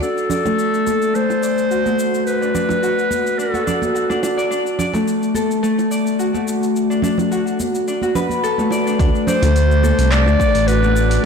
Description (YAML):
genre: organic downtempo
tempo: 107 BPM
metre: 4/4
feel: swing 54% on 16ths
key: D mixolydian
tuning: A4 = 439 Hz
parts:
  - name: warm clarinet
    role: melody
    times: 0.0-4.2, 9.3-11.2 s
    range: A4 to D5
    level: -20 LUFS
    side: left 1 dB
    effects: tape echo, shimmer reverb
  - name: Celtic harp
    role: arpeggios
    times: 0.0-11.3 s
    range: A3 to D5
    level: -18 LUFS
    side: left 2 dB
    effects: low-pass filter, tape echo, shimmer reverb
  - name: deep house drum kit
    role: drums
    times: 0.0-11.2 s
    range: handclaps, hi-hat, shaker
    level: -30 LUFS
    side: left 1 dB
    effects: overdrive
  - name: congas and bongos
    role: percussion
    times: 0.3-10.9 s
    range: none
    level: -26 LUFS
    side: right 5 dB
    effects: none
  - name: smooth synth bass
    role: bass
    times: 9.0-11.2 s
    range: A1 to D2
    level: -15 LUFS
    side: right 1 dB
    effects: sidechain pumping
  - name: electronic kick drum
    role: drums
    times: 9.0-10.5 s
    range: none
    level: -18 LUFS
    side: right 1 dB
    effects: overdrive
  - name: drifting glass-harmonics texture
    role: texture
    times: 9.4-11.3 s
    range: D4 to D5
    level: -29 LUFS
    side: right 3 dB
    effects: chorus, built-in reverb, shimmer reverb
room: moderate echo chamber reverb, RT60 2.1 s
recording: blown-out, overdriven recording, overdrive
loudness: -15 LUFS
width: side -6 dB against mid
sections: 0.0-9.0 A section; 9.0-11.3 B section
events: filter sweep on harp 0.0-9.0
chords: 0.0 D; 6.8 Bm7/A; 9.0 D